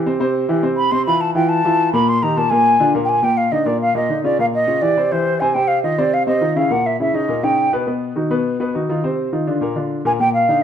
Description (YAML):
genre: jazz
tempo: 207 BPM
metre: 4/4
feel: straight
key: Eb major from 3.2 s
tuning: A4 = 440 Hz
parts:
  - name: warm grand piano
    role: accompaniment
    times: 0.0-10.6 s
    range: Bb2 to C5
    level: -18 LUFS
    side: left 1 dB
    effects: none
  - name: breathy mellow concert flute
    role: melody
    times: 0.8-7.7, 10.1-10.6 s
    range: C5 to C6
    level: -16 LUFS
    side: equal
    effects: none
room: moderate large studio reverb, RT60 1.0 s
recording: minimal, uncompressed stereo recording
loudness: -15 LUFS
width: side -8 dB against mid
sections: 0.0-3.2 A section; 3.2-10.6 B section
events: flute solo 0.0-3.2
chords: 0.0 C; 0.9 Fmaj7; 2.1 Bb13sus4; 2.6 Bb7; 3.2 Ebsus2; 4.4 Gm7b5; 5.0 C; 5.5 F5; 6.7 Bbdim; 7.3 Eb7b13; 7.9 B; 9.0 F5; 9.6 Bb